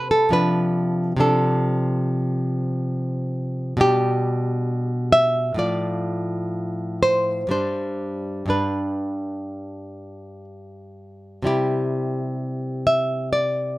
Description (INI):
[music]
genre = romantic piece for solo classical guitar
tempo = 60-70 BPM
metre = 4/4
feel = rubato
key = unclear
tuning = A4 = 440 Hz
[part]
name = nylon-string guitar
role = solo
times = 0.0-13.8 s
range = G2 to E5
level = -20 LUFS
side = equal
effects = none
[sound]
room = light reverb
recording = none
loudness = -20 LUFS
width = side -18 dB against mid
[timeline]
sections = 0.0-13.8 A section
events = none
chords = 0.3 Dm7/C; 3.8 G/B; 5.6 F/A; 7.5 G; 11.5 C